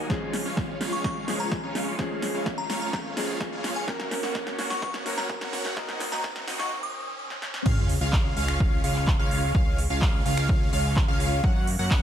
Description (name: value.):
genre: EDM, festival progressive house.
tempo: 127 BPM.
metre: 4/4.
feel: straight.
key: Db major.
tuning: A4 = 440 Hz.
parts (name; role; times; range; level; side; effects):
warm concert grand piano; accompaniment; 0.0-7.7 s; F3 to Bb4; -34 LUFS; left 2 dB; sidechain pumping, ping-pong delay.
supersaw chords; riff; 0.0-12.0 s; Ab3 to Gb5; -32 LUFS; equal; phaser, sidechain pumping, low-pass filter, ping-pong delay.
fat analog bass; bass; 0.0-12.0 s; Db2 to Gb2; -32 LUFS; equal; sidechain pumping, high-pass filter.
riser and sub drop; sound effects; 0.0-9.5 s; none; -36 LUFS; right 1 dB; none.
big-room dance drum kit; drums; 0.1-12.0 s; crash cymbal, finger snaps, handclaps, hi-hat, snare drum; -33 LUFS; right 1 dB; overdrive.
electronic kick drum; drums; 0.1-12.0 s; none; -26 LUFS; equal; overdrive.
glassy synth bell; melody; 0.9-7.3 s; Ab5 to Eb6; -34 LUFS; left 1 dB; chorus, ping-pong delay.
plucky unison lead; arpeggios; 7.7-12.0 s; F5 to Gb5; -31 LUFS; equal; analog chorus, sidechain pumping, ping-pong delay.
room: light reverb.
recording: dark, warm production, high-pass filter.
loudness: -24 LUFS.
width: side -10 dB against mid.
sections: 0.0-7.7 A section; 7.7-12.0 B section.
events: build-up 0.0-7.7; drum fill 0.0-6.7, 7.3-7.7; riser 0.0-7.7; filter sweep 0.0-7.7; break 6.7-7.7; drop 7.7-12.0; impact 7.7-9.5.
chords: 0.1 Db; 3.9 Gb; 5.8 Ebm; 7.7 Db; 11.4 Gb.